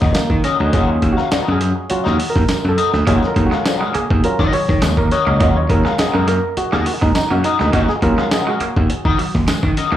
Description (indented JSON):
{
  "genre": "funk",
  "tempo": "103 BPM",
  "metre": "4/4",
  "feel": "straight",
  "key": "Eb minor",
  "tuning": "A4 = 441 Hz",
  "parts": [
    { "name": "electric guitar at the edge of break-up", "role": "accompaniment", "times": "0.0-10.0 s", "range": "Db4 to F5", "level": "-22 LUFS", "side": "left 6 dB", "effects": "wah, slapback echo" },
    { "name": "mellow clav", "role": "stabs", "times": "0.0-9.9 s", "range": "Gb3 to Eb5", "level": "-20 LUFS", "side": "right 2 dB", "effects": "tape echo, slapback echo" },
    { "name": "gritty slap bass", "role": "bass", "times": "0.0-10.0 s", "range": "Db2 to Eb3", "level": "-17 LUFS", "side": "equal", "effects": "overdrive" },
    { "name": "dusty soul sampler-style drum kit", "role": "drums", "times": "0.0-9.9 s", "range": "hi-hat, kick drum, snare drum", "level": "-20 LUFS", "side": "equal", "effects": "overdrive" },
    { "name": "tambourine", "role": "percussion", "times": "0.1-9.6 s", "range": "none", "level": "-34 LUFS", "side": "left 4 dB", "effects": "none" },
    { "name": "twangy electric guitar", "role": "riff", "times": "3.1-10.0 s", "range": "Gb3 to Bb3", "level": "-25 LUFS", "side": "right 7 dB", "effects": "slapback echo" }
  ],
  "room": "light reverb",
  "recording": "live gig heard through the venue's PA, club reverb",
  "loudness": "-14 LUFS",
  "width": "side -12 dB against mid",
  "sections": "0.0-10.0 A section",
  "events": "break 0.0-3.1; clav solo 0.0-10.0",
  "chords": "0.0 Ebm7"
}